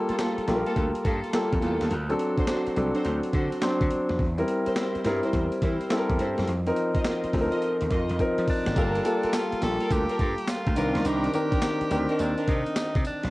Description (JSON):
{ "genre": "R&B, new jack swing", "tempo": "105 BPM", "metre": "4/4", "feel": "swing 66% on 16ths", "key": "G minor", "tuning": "A4 = 440 Hz", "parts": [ { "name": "warm concert grand piano", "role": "accompaniment", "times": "0.0-13.3 s", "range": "Eb3 to D5", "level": "-26 LUFS", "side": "left 1 dB", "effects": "none" }, { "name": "dark studio string section", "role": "stabs", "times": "0.1-12.5 s", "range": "Bb3 to Eb5", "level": "-32 LUFS", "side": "right 1 dB", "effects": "none" }, { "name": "gritty slap bass", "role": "bass", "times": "0.1-13.3 s", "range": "G1 to F3", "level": "-30 LUFS", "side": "equal", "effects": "overdrive" }, { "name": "boom bap sampler-style drum kit", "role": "drums", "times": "0.1-13.3 s", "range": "handclaps, hi-hat, kick drum, snare drum, tambourine", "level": "-29 LUFS", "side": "equal", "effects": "cassette tape" }, { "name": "edgy tenor saxophone", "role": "melody", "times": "8.5-13.3 s", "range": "D4 to A4", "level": "-32 LUFS", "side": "right 1 dB", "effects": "cassette tape" } ], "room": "light reverb, small room reverb", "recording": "home recording on cassette", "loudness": "-23 LUFS", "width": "side -19 dB against mid", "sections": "0.0-8.8 A section; 8.8-13.3 B section", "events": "drum fill 8.2-8.8", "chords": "0.0 Gm9; 1.9 D7; 4.2 C7/E; 6.5 F7sus4; 8.8 Gm9; 10.8 Cm9" }